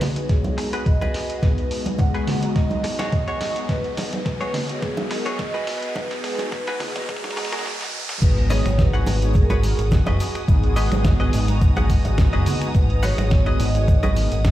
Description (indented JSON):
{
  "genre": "nu-disco, nu disco",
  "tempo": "106 BPM",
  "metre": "4/4",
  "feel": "swing 54% on 16ths",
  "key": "G# minor",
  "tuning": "A4 = 440 Hz",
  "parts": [
    { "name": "vibraphone with medium mallets", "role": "melody", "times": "0.0-14.5 s", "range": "F#4 to F#5", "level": "-30 LUFS", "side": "right 1 dB", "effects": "vintage 12-bit sampler grit, low-pass filter, dub echo" },
    { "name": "mellow synth brass", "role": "accompaniment", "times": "0.0-14.3 s", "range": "G#3 to A#5", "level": "-29 LUFS", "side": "equal", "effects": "chorus, phaser, sidechain pumping, tape echo" },
    { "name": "dark symphonic string section", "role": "sustained chords", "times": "0.0-14.5 s", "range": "B3 to D#6", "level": "-35 LUFS", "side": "equal", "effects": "sidechain pumping" },
    { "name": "dusty soul sampler-style drum kit", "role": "drums", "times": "0.0-14.5 s", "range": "crash cymbal, finger snaps, hi-hat, snare drum", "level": "-30 LUFS", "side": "equal", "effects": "high-pass filter on snare, high-pass filter on hats, high-pass filter on cymbals, high-pass filter on room" },
    { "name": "congas and egg shaker", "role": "percussion", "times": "0.0-14.5 s", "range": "none", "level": "-29 LUFS", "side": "right 2 dB", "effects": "none" },
    { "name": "riser", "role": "sound effects", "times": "1.0-8.2 s", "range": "none", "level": "-34 LUFS", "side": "right 1 dB", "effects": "none" },
    { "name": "direct-recorded clean electric guitar", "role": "riff", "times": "0.2-14.3 s", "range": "F#4 to F#5", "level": "-31 LUFS", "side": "left 1 dB", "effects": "lush chorus, low-pass filter, tape echo" },
    { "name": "electronic kick drum", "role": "drums", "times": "0.3-14.5 s", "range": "none", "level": "-19 LUFS", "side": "equal", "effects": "none" },
    { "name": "fingered electric bass with an envelope filter", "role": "bass", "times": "8.2-14.5 s", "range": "F#1 to G#1", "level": "-20 LUFS", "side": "equal", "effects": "sidechain pumping" }
  ],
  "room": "light reverb",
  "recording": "played on a big sound system in a bare room, stone room reverb, high-pass filter",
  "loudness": "-18 LUFS",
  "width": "side -14 dB against mid",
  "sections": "0.0-8.2 A section; 8.2-14.5 B section",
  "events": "build-up 0.0-8.2; drum fill 0.0-7.7, 7.7-8.2; filter sweep on analog polysynth 0.0-8.2; filter sweep on vibraphone 0.0-8.2; filter sweep 0.0-8.2; riser 1.0-8.2; drop 8.2-14.5",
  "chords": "0.0 G#m7"
}